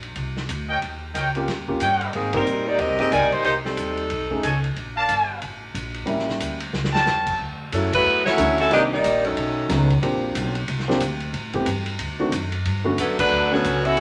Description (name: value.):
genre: jazz, big band swing.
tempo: 182 BPM.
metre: 4/4.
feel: swing 62% on 8ths.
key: D major from 7.4 s.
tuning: A4 = 440 Hz.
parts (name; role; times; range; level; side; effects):
upright bass; bass; 0.0-14.0 s; G1 to Bb2; -30 LUFS; equal; none.
vintage drum kit; drums; 0.0-14.0 s; crash cymbal, hi-hat, kick drum, ride cymbal, snare drum; -33 LUFS; equal; none.
warm trumpet section; stabs; 0.7-7.4 s; A4 to A5; -25 LUFS; equal; none.
warm grand piano; accompaniment; 1.4-13.6 s; D3 to A4; -28 LUFS; equal; none.
warm saxophone section; melody; 2.1-4.6, 7.7-9.7, 13.0-14.0 s; Eb3 to E5; -22 LUFS; equal; none.
clear trombone section; second line; 7.7-9.7, 13.0-14.0 s; C#3 to E4; -31 LUFS; equal; none.
room: wet studio reverb, RT60 0.9 s.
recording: none.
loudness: -22 LUFS.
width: mono.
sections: 0.0-7.4 A section; 7.4-14.0 B section.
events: band accent 2.3, 7.9, 13.1; drum fill 6.7-7.1.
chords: 0.0 Gmadd11 (rootless); 0.8 Eb7; 2.1 Abmaj9; 3.4 Cm; 4.1 B13; 4.8 Bbmaj7; 6.1 A7b9; 7.4 Dmaj9; 8.7 Cm9; 9.4 B9; 10.0 Bb69; 11.3 Am9; 12.0 D7b9; 12.7 Gmaj9#11.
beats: 0.16 0.48 | 0.81 1.14 1.47 1.80 | 2.13 2.46 2.79 3.12 | 3.44 3.77 4.10 4.43 | 4.76 5.09 5.42 5.75 | 6.08 6.41 6.73 7.06 | 7.39 7.72 8.05 8.38 | 8.71 9.04 9.37 9.69 | 10.02 10.35 10.68 11.01 | 11.34 11.67 12.00 12.32 | 12.65 12.98 13.31 13.64 | 13.97.